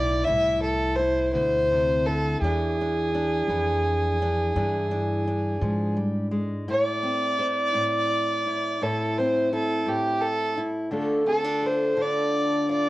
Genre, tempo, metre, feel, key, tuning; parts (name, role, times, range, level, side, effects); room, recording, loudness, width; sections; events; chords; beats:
acoustic country blues, solo or duo; 56 BPM (dotted quarters); 12/8; straight; A minor; A4 = 438 Hz
dark fiddle; melody; 0.0-12.9 s; G4 to E5; -24 LUFS; equal; cassette tape
fingerpicked steel-string acoustic guitar; accompaniment; 0.0-12.9 s; A2 to C5; -28 LUFS; left 1 dB
upright bass; bass; 0.0-6.6 s; B1 to G#2; -28 LUFS; equal
light reverb, small room ambience; home recording on cassette; -22 LUFS; side -17 dB against mid
0.0-6.7 A section; 6.7-12.9 B section
fiddle solo 6.7-12.9
0.0 Am; 2.4 E7#9; 6.7 Am; 10.9 Dm
0.28 1.34 | 2.41 3.48 4.54 5.61 | 6.67 7.74 8.80 9.86 | 10.93 11.99